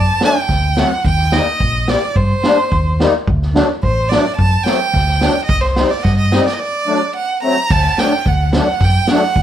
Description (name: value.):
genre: klezmer.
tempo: 108 BPM.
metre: 4/4.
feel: straight.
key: D phrygian dominant.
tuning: A4 = 439 Hz.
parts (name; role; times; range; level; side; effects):
clear violin; melody; 0.0-9.4 s; C5 to Bb5; -18 LUFS; right 3 dB; plate reverb.
hollow-body short-scale picked electric bass; bass; 0.0-9.4 s; A1 to G2; -16 LUFS; equal; none.
musette accordion; accompaniment; 0.2-9.2 s; F#3 to Eb4; -16 LUFS; left 2 dB; none.
street-band drum kit; drums; 0.2-9.4 s; crash cymbal, kick drum, snare drum; -19 LUFS; right 1 dB; none.
room: moderate studio reverb, RT60 0.6 s.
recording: heard from further back in the room.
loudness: -12 LUFS.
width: side -10 dB against mid.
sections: 0.0-7.7 A section; 7.7-9.4 B section.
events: break 6.6-7.7.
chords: 0.0 D; 1.0 Eb; 3.3 D; 5.5 Cm; 6.6 D.